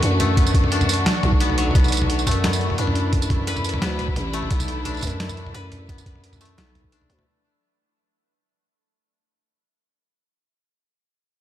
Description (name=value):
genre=half-time drum and bass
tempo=174 BPM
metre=4/4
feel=swing 53% on 16ths, half-time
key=B minor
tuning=A4 = 439 Hz
part: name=rich studio string section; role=sustained chords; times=0.0-7.3 s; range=E3 to F#4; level=-28 LUFS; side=left 1 dB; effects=vintage 12-bit sampler grit, sidechain pumping
part: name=koto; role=arpeggios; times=0.0-9.3 s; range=F#3 to B4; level=-28 LUFS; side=left 4 dB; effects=ping-pong delay
part: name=growling 808-style bass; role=bass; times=0.0-7.3 s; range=A1 to F#2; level=-23 LUFS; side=equal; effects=none
part: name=boom bap sampler-style drum kit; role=drums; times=0.0-7.3 s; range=hi-hat, snare drum, tambourine, toms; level=-25 LUFS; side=right 1 dB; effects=none
part: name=electronic kick drum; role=drums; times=0.4-6.9 s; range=none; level=-20 LUFS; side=equal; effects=none
room=light reverb, digital ambience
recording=none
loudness=-18 LUFS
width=side -12 dB against mid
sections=0.0-7.3 A section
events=drop 0.0-7.3; fade-out 1.8-7.3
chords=0.0 Bm